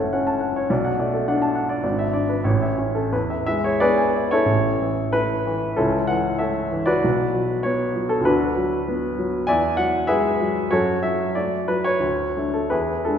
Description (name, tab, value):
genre	classical, romantic character piece for solo piano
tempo	82-107 BPM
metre	2/4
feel	rubato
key	A major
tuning	A4 = 437 Hz
part	warm grand piano	solo	0.0-13.2 s	F#1 to A5	-19 LUFS	equal	none
room	wet scoring stage reverb, RT60 1.8 s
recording	heard from further back in the room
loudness	-19 LUFS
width	side -8 dB against mid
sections	0.0-4.5 A section; 4.5-13.2 B section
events	none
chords	0.0 F#m; 0.7 Bm7; 1.8 E7/G#; 2.4 A; 3.1 E; 4.5 A; 5.8 A/C#; 7.0 Bm; 8.3 Bm/D; 9.5 E9; 10.7 F#m; 12.0 D5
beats	0.12 | 0.69 1.26 | 1.83 2.44 | 3.12 3.80 | 4.47 5.13 | 5.77 6.40 | 7.03 7.64 | 8.26 8.88 | 9.48 10.09 | 10.72 11.35 | 12.03 12.71